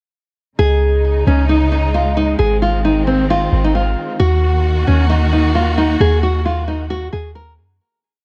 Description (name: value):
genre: hip hop, trap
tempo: 133 BPM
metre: 4/4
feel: half-time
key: unclear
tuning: A4 = 440 Hz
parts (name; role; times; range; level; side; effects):
- nylon-string guitar; melody; 0.6-7.5 s; C4 to Bb4; -19 LUFS; equal; low-pass filter
- dark symphonic string section; sustained chords; 0.6-7.8 s; Db3 to Gb4; -24 LUFS; equal; none
- clean 808-style bass; bass; 0.6-7.8 s; Ab1 to Gb2; -18 LUFS; equal; none
room: light reverb, small room ambience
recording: none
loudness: -15 LUFS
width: mono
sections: 0.6-7.8 hook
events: fade-out 6.0-7.8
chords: 0.6 Dbsus2; 2.4 Ab; 4.2 Ebm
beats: | 0.59 1.04 1.49 1.94 | 2.39 2.85 3.30 3.75 | 4.20 4.65 5.10 5.55 | 6.00 6.45 6.91 7.36